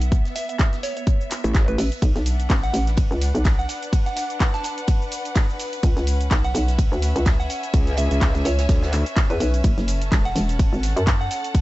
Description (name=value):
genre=bass house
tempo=126 BPM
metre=4/4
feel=swing 57% on 16ths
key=unclear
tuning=A4 = 440 Hz
part: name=hollow knocking FM bass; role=bass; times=0.0-11.3 s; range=E1 to F#2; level=-21 LUFS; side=equal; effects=tube saturation, sidechain pumping
part: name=garage drum kit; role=drums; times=0.0-11.6 s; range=cabasa, handclaps, hi-hat, ride cymbal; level=-30 LUFS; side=equal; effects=small room ambience
part: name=modern studio drum kit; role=drums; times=0.0-11.6 s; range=hi-hat, snare drum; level=-40 LUFS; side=right 2 dB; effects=none
part: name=rich symphonic string section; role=texture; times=0.0-11.6 s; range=B3 to A5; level=-31 LUFS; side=left 1 dB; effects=sidechain pumping
part: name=electronic kick drum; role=drums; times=0.1-11.6 s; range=none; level=-19 LUFS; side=equal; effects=small room ambience
part: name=soft synth bell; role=melody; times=0.4-11.4 s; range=B4 to A5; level=-31 LUFS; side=right 2 dB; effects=chorus, dub echo
part: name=growl bass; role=bass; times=1.4-1.8, 7.7-9.0 s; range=A1 to D2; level=-21 LUFS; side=equal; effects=chorus, tube saturation, sidechain pumping
room=little or no reverb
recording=dark, warm production, nothing above 8.0 kHz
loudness=-18 LUFS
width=side -18 dB against mid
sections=0.0-11.6 A section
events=none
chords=0.0 Asus2; 2.0 Bm7; 5.8 C#m7; 9.6 F#m